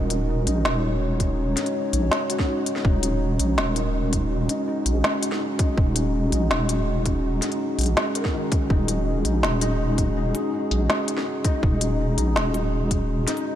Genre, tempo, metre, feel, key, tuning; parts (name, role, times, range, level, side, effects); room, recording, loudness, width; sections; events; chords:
half-time drum and bass; 164 BPM; 4/4; half-time; Eb minor; A4 = 441 Hz
dark analog pad; sustained chords; 0.0-13.6 s; Ab3 to Db5; -27 LUFS; right 1 dB; chorus, sidechain pumping
felt-muted upright piano; arpeggios; 0.0-13.6 s; Eb3 to Bb4; -30 LUFS; left 2 dB; ensemble chorus, ping-pong delay
deep soft wobble bass; bass; 0.0-13.3 s; Eb1 to Bb1; -24 LUFS; equal; chorus
organic electronic drum kit; drums; 0.1-13.4 s; hi-hat, snare drum; -28 LUFS; left 1 dB
electronic kick drum; drums; 1.2-13.0 s; -22 LUFS; equal
light reverb, digital ambience; -20 LUFS; side -11 dB against mid
0.0-13.6 A section
break 2.5-2.8
0.0 Ebm